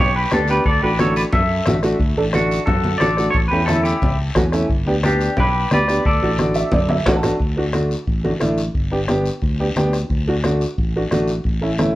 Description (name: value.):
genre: latin, cumbia.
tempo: 178 BPM.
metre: 4/4.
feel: straight.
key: D major.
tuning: A4 = 440 Hz.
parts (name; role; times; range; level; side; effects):
clean electric guitar; melody; 0.0-7.0 s; D4 to E5; -21 LUFS; equal; spring reverb.
fingered electric bass; bass; 0.0-12.0 s; G1 to F#2; -22 LUFS; equal; none.
clear upright piano; accompaniment; 0.3-12.0 s; A3 to A5; -20 LUFS; right 1 dB; none.
bombo; percussion; 0.3-12.0 s; none; -23 LUFS; equal; none.
congas; percussion; 0.3-12.0 s; none; -23 LUFS; left 1 dB; none.
guiro; percussion; 0.3-12.0 s; none; -34 LUFS; left 4 dB; none.
room: light reverb.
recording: worn, warbling old tape, cassette tape, warbly pitch drift.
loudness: -16 LUFS.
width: side -16 dB against mid.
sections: 0.0-7.4 A section; 7.4-12.0 B section.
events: upright piano fill 6.4-7.4; drum fill 6.7-7.4.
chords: 0.0 G; 0.7 D; 3.4 A7; 4.7 G; 6.0 D; 8.8 G; 10.1 D.